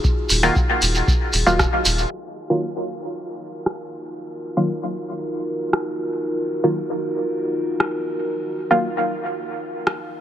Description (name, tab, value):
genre	dub techno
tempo	116 BPM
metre	4/4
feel	straight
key	Eb minor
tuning	A4 = 442 Hz
part	dark analog pad	sustained chords	0.0-10.2 s	Eb4 to Bb4	-26 LUFS	equal	chorus, vintage 12-bit sampler grit, sidechain pumping
part	electronic kick drum	drums	0.0-1.7 s	none	-20 LUFS	equal	none
part	shekere	percussion	0.0-2.1 s	none	-22 LUFS	right 2 dB	none
part	soft dub sub bass	bass	0.3-2.1 s	Eb1	-22 LUFS	equal	sidechain pumping
part	booming analog drum machine	drums	0.3-10.0 s	hi-hat, rim click	-23 LUFS	equal	low-pass filter on hats, low-pass filter on snare
part	filtered dub chord stab	stabs	0.4-8.9 s	Eb3 to F4	-22 LUFS	equal	chorus, phaser, sidechain pumping, dub echo
room	light reverb, digital ambience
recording	low-pass filter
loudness	-19 LUFS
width	side -11 dB against mid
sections	0.0-2.1 A section; 2.1-10.2 B section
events	band accent 1.6; filter sweep on drum 2.1-10.2; filter sweep 2.1-10.2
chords	0.0 Ebmadd9